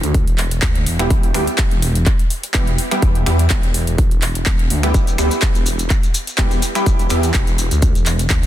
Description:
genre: bass house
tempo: 125 BPM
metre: 4/4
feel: swing 54% on 16ths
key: E minor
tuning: A4 = 441 Hz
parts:
  - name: phased detuned saw bass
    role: bass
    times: 0.0-8.5 s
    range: E1 to E2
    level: -19 LUFS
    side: equal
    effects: phaser, overdrive, sidechain pumping
  - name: big-room dance drum kit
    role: drums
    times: 0.0-8.5 s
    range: finger snaps, handclaps, hi-hat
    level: -22 LUFS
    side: equal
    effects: none
  - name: electronic kick drum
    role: drums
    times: 0.1-8.4 s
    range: none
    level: -16 LUFS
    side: equal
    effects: none
  - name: orchestra-hit-like synth stab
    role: stabs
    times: 1.0-7.3 s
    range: G3 to G4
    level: -22 LUFS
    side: right 1 dB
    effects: built-in reverb, sidechain pumping, digital delay
  - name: maracas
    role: percussion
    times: 4.9-8.5 s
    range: none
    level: -28 LUFS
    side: left 2 dB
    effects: none
room: little or no reverb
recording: dense, heavily limited modern master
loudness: -14 LUFS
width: side -12 dB against mid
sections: 0.0-8.5 A section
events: none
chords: 0.0 Em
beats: 0.14 0.62 | 1.10 1.58 2.06 2.54 | 3.02 3.50 3.98 4.46 | 4.95 5.42 5.91 6.38 | 6.87 7.34 7.83 8.30

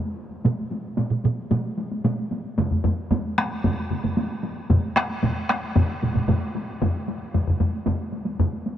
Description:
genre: japanese traditional, taiko drum ensemble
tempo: 113 BPM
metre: 4/4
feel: straight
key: none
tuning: none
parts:
  - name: taiko ensemble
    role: percussion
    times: 0.0-8.8 s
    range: none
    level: -27 LUFS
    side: equal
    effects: none
  - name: taiko ensemble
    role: percussion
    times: 0.4-6.4 s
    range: none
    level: -25 LUFS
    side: right 3 dB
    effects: none
  - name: taiko ensemble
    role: percussion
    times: 2.6-8.5 s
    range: none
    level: -24 LUFS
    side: left 1 dB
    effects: none
room: moderate huge ambient reverb, RT60 6.9 s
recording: worn, warbling old tape, cassette tape, warbly pitch drift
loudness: -22 LUFS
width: side -11 dB against mid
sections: 0.0-8.8 A section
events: none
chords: none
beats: | 0.45 0.98 1.51 2.05 | 2.58 3.11 3.64 4.17 | 4.71 5.24 5.76 6.29 | 6.82 7.35 7.87 8.40

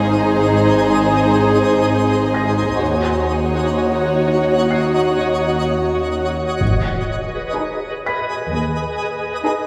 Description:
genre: cinematic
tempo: 63 BPM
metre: 4/4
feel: straight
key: G# minor from 6.6 s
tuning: A4 = 440 Hz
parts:
  - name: warm symphonic violin section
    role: melody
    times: 0.0-9.7 s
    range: B4 to Db5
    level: -26 LUFS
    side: equal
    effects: none
  - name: warm symphonic violin section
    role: second line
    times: 0.0-9.7 s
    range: Gb4 to Ab4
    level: -26 LUFS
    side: equal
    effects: none
  - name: dark symphonic viola section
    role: accompaniment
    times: 0.0-9.7 s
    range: Eb4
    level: -27 LUFS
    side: equal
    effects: none
  - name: mellow French horn section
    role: sustained chords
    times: 0.0-6.3 s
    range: C4 to Gb4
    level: -23 LUFS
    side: equal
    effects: none
  - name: twinkling granular texture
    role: sustained chords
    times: 0.0-9.7 s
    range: Gb4 to Eb5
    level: -24 LUFS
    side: equal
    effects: built-in reverb
  - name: rich symphonic double bass section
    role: bass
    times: 0.0-9.3 s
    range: Ab1 to Eb2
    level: -27 LUFS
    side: equal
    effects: none
  - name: warm chamber cello section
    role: bass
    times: 0.0-9.3 s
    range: Eb2 to Ab2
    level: -26 LUFS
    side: equal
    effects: none
  - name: felt-muted upright piano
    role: texture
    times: 2.3-9.7 s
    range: B5 to C7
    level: -32 LUFS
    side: equal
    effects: none
  - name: timpani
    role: percussion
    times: 6.6-8.0 s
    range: G#2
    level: -26 LUFS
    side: equal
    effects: none
  - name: impact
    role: sound effects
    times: 6.6-9.7 s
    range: none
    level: -28 LUFS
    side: equal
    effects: none
room: wet scoring stage reverb, RT60 1.5 s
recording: recorded in a church or concert hall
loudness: -18 LUFS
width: mono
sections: 0.0-6.6 A section; 6.6-9.7 B section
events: impact 6.6-9.7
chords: 0.0 Ab; 2.8 Ebm7; 6.6 G#m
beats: 0.90 1.85 | 2.80 3.76 4.71 5.66 | 6.61 7.57 8.52 9.47

